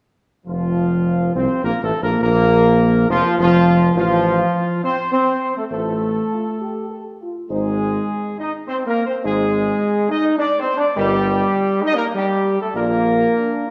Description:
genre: classical, ceremonial fanfare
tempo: 103 BPM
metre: 3/4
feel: straight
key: Bb major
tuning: A4 = 439 Hz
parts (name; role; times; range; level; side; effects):
- mellow trumpet section; melody; 0.5-13.7 s; F4 to Eb5; -26 LUFS; equal; none
- mellow French horn section; sustained chords; 0.5-13.7 s; F3 to D5; -26 LUFS; equal; none
- warm trombone section; sustained chords; 0.5-13.7 s; F3 to Eb4; -21 LUFS; equal; none
- warm tuba; bass; 0.5-13.3 s; F1 to C2; -24 LUFS; equal; none
room: wet concert hall reverb, RT60 1.8 s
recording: dark, warm production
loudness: -18 LUFS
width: mono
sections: 0.5-13.7 A section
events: none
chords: 0.5 Bbsus2/F; 4.0 F/A; 7.5 Ab; 11.0 Eb/G; 12.8 Bb

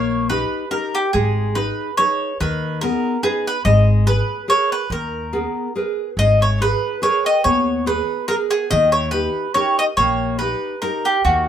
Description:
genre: italian folk, Italian serenade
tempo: 142 BPM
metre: 3/4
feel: swing 55% on 8ths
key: G# harmonic minor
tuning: A4 = 440 Hz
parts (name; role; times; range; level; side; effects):
- mandolin; melody; 0.0-11.5 s; F#4 to D#5; -19 LUFS; right 1 dB; none
- nylon-string guitar; accompaniment; 0.0-11.5 s; D#3 to B4; -23 LUFS; equal; none
- upright bass; bass; 0.0-11.5 s; G#1 to D#2; -20 LUFS; equal; none
- mandolin; second line; 6.2-11.5 s; A#3 to G#4; -30 LUFS; right 7 dB; none
room: moderate studio reverb, RT60 0.7 s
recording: band playing live in one room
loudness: -16 LUFS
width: side -9 dB against mid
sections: 0.0-11.5 A section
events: none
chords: 0.0 D#; 1.1 G#m; 3.7 G#madd9; 8.7 D#

